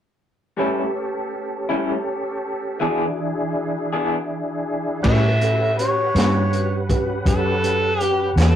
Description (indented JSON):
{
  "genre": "slow blues",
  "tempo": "54 BPM (dotted quarters)",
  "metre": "12/8",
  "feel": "straight",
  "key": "A mixolydian",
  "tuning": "A4 = 440 Hz",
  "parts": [
    { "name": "electric guitar through a small old amp", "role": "accompaniment", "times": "0.6-8.6 s", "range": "A2 to G#4", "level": "-23 LUFS", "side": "left 3 dB", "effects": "tremolo" },
    { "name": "mellow tine electric piano", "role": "accompaniment", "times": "0.6-8.6 s", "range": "E3 to D5", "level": "-28 LUFS", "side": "right 1 dB", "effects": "medium stereo tremolo" },
    { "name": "tonewheel organ", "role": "sustained chords", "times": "0.6-8.6 s", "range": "C#4 to F#5", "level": "-26 LUFS", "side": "equal", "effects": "slow rotary speaker, chorus vibrato" },
    { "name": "overdriven harmonica", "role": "melody", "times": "5.0-8.6 s", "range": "A4 to E5", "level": "-21 LUFS", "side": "equal", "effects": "none" },
    { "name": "vintage muted fingered electric bass", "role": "bass", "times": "5.0-8.6 s", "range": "E2 to A2", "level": "-20 LUFS", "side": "equal", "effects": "none" },
    { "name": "crunchy breakbeat drum kit", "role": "drums", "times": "5.0-8.6 s", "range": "crash cymbal, hi-hat, kick drum, snare drum", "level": "-24 LUFS", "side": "equal", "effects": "none" }
  ],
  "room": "moderate studio reverb, RT60 0.6 s",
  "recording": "rough rehearsal-room recording, tube saturation",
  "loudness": "-19 LUFS",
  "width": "side -10 dB against mid",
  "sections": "0.6-5.0 A section; 5.0-8.6 B section",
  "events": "none",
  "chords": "0.6 A7; 2.8 E7; 5.0 A13"
}